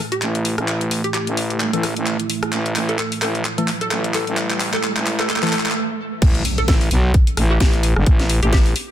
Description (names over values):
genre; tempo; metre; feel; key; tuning
bass house; 130 BPM; 4/4; swing 56% on 16ths; unclear; A4 = 444 Hz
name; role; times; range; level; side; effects
dark analog pad; sustained chords; 0.0-5.7 s; A3 to E5; -27 LUFS; right 5 dB; chorus, sidechain pumping
riser and impact; sound effects; 1.2-8.1 s; none; -29 LUFS; equal; none
hollow square pluck; melody; 0.1-8.6 s; G4 to A4; -27 LUFS; equal; lush chorus, tape echo
garage drum kit; drums; 0.1-8.9 s; crash cymbal, handclaps, hi-hat, rim click, snare drum; -23 LUFS; equal; high-pass filter on hats, small room ambience, high-pass filter on snare, high-pass filter on cymbals
growling FM bass; bass; 0.2-8.7 s; G1 to B1; -20 LUFS; equal; sidechain pumping, high-pass filter
percussive organ stab; stabs; 1.7-5.5 s; E3 to A4; -26 LUFS; left 2 dB; chorus, sidechain pumping, tape echo
electronic kick drum; drums; 6.2-8.6 s; none; -15 LUFS; equal; small room ambience
room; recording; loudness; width
light reverb; dense, heavily limited modern master; -16 LUFS; side -11 dB against mid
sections
0.0-6.2 A section; 6.2-8.9 B section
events
build-up 0.0-6.2; drum fill 0.0-5.8; filter sweep on synth stab 0.0-6.2; filter sweep on analog synth pad 0.0-6.2; riser 1.2-5.8; stop 5.8-6.2; drop 6.2-8.9; impact 6.2-8.1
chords
0.0 A5